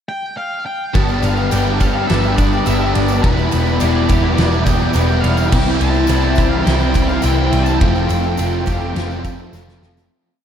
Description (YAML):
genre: rock, shoegaze and dream pop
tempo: 105 BPM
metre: 4/4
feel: straight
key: G mixolydian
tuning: A4 = 440 Hz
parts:
  - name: octave-fuzz lead guitar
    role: melody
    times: 0.1-9.5 s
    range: B4 to A5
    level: -24 LUFS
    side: equal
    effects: distortion, ping-pong delay
  - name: crunchy overdriven guitar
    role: riff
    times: 0.9-10.1 s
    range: E2 to G4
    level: -21 LUFS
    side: right 6 dB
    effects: reverse reverb
  - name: overdriven electric guitar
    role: riff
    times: 0.9-10.1 s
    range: E2 to G4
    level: -20 LUFS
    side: left 8 dB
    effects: ensemble chorus
  - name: loose indie drum kit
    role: drums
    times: 0.9-10.1 s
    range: crash cymbal, kick drum, ride cymbal, snare drum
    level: -20 LUFS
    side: equal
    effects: none
  - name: tambourine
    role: percussion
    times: 0.9-10.1 s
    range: none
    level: -38 LUFS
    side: left 14 dB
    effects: none
  - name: warm analog pad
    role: sustained chords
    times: 1.0-10.1 s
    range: E4 to A5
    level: -27 LUFS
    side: right 2 dB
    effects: none
  - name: twangy electric guitar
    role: arpeggios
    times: 1.0-10.1 s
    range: E3 to A4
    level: -30 LUFS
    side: right 7 dB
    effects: lush chorus, ping-pong delay
  - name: vintage muted picked electric bass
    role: bass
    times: 1.0-10.1 s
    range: E1 to C2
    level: -18 LUFS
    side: equal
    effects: none
room: moderate huge ambient reverb, RT60 7.9 s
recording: dreamy mix soaked in reverb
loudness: -13 LUFS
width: side -9 dB against mid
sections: 0.0-0.9 pickup bar; 0.9-10.1 A section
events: fade-out 7.8-10.1; drum fill 9.5-10.1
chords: 0.0 N.C.; 0.9 Gadd9; 3.2 Em7; 5.5 C; 7.8 Fadd9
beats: 0.37 | 0.94 1.51 2.09 2.66 | 3.23 3.80 4.37 4.95 | 5.52 6.09 6.66 7.24 | 7.81 8.38 8.96 9.53